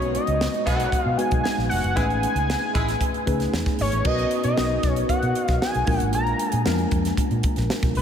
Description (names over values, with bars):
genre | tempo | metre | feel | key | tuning
polished 1980s jazz-funk pop | 115 BPM | 4/4 | straight | unclear | A4 = 440 Hz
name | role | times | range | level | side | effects
fat analog lead | melody | 0.0-8.0 s | C#5 to A#5 | -26 LUFS | equal | chorus, diffuse ambient delay
tine electric piano | accompaniment | 0.0-8.0 s | G#3 to B4 | -26 LUFS | left 2 dB | wide subtle chorus
vintage muted fingered electric bass | bass | 0.0-8.0 s | E#1 to B2 | -26 LUFS | equal | none
crisp fusion drum kit | drums | 0.0-8.0 s | crash cymbal, hi-hat, kick drum, snare drum | -26 LUFS | equal | none
clear horn section | second line | 0.7-2.9 s | G#3 to G#4 | -35 LUFS | equal | none
room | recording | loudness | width
wet cathedral reverb, RT60 5.1 s | dreamy mix soaked in reverb | -20 LUFS | side -8 dB against mid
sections
0.0-4.1 A section; 4.1-8.0 B section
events
none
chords
0.0 B6; 2.0 Amaj9#11; 4.1 Bmaj7; 5.9 A#7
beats
0.41 0.93 1.45 | 1.97 2.49 3.01 3.53 | 4.05 4.57 5.09 5.62 | 6.14 6.66 7.18 7.70